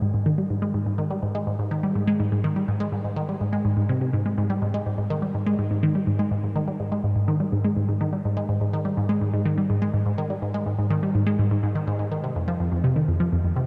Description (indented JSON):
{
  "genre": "ambient",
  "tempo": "124 BPM",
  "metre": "4/4",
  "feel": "straight",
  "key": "unclear",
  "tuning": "A4 = 440 Hz",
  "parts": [
    { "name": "resonant blip pluck", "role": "solo", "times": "0.0-13.6 s", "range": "F2 to Ab3", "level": "-24 LUFS", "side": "equal", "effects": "phaser, analog delay" }
  ],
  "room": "wet huge ambient reverb, RT60 7.7 s",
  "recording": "dark, warm production",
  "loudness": "-24 LUFS",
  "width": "mono",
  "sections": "0.0-13.7 A section",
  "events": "none",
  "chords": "none"
}